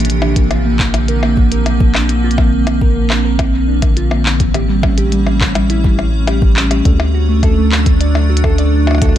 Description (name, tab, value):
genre	IDM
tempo	104 BPM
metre	4/4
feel	straight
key	unclear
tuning	A4 = 440 Hz
part	icy glass pad	sustained chords	0.0-9.2 s	D3 to D4	-18 LUFS	right 2 dB	chorus, built-in reverb
part	rubbery square bass	bass	0.0-9.2 s	A1 to D2	-15 LUFS	equal	none
part	glitchy drum kit	drums	0.0-9.2 s	handclaps, hi-hat, percussion blips	-20 LUFS	left 2 dB	none
part	harp-like synth pluck	arpeggios	0.2-9.1 s	G3 to D5	-20 LUFS	right 1 dB	chorus, tape echo
part	electronic kick drum	drums	0.4-9.1 s	none	-14 LUFS	equal	none
room	digital ambience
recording	none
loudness	-11 LUFS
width	side -11 dB against mid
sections	0.0-9.2 A section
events	none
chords	0.0 Bbadd9; 4.5 A7; 6.9 D